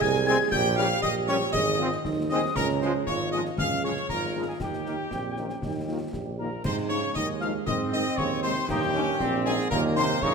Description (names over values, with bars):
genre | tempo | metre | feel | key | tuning
military-style march for wind band | 118 BPM | 2/4 | straight | Ab major | A4 = 440 Hz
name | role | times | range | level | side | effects
warm trumpet section | melody | 0.0-10.3 s | G4 to Ab5 | -30 LUFS | equal | none
warm euphonium | second line | 0.0-10.3 s | G2 to Ab4 | -31 LUFS | right 4 dB | none
wooden piccolo | second line | 0.0-10.3 s | G5 to Ab6 | -33 LUFS | left 6 dB | none
warm tuba | bass | 0.0-10.3 s | Ab1 to Ab2 | -30 LUFS | right 3 dB | none
concert snare drum, concert bass drum and clash cymbals | drums | 0.0-10.3 s | none | -36 LUFS | left 2 dB | none
mellow French horn section | accompaniment | 0.3-10.1 s | Ab3 to Ab4 | -36 LUFS | left 7 dB | none
mellow trombone section | sustained chords | 0.3-10.3 s | Eb3 to Eb4 | -33 LUFS | right 2 dB | none
room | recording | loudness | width
moderate scoring stage reverb, RT60 1.8 s | none | -24 LUFS | side -5 dB against mid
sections
0.0-6.6 A section; 6.6-10.3 B section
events
none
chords
0.0 Ab/C; 0.5 Gdim/Bb; 1.5 Ab; 2.6 Db; 4.6 Eb; 6.6 Ab; 8.7 Eb7